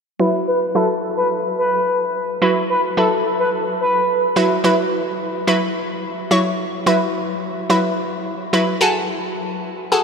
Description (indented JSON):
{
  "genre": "pop",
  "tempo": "108 BPM",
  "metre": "4/4",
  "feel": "straight",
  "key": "unclear",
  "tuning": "A4 = 441 Hz",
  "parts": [
    { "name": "analog pluck", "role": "accompaniment", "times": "0.2-10.0 s", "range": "F#3 to C#5", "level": "-18 LUFS", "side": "equal", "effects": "chorus, low-pass filter" },
    { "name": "expressive synth lead", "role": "melody", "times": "0.5-4.2 s", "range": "A4 to B4", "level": "-20 LUFS", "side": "left 1 dB", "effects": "chorus, low-pass filter, tape echo" }
  ],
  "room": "wet cathedral reverb, RT60 6.2 s",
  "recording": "dreamy mix soaked in reverb",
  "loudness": "-16 LUFS",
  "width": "side -5 dB against mid",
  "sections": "0.2-4.6 A section; 4.6-10.0 B section",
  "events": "filter sweep 0.2-4.6",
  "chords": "0.2 Esus2; 8.8 F#madd9"
}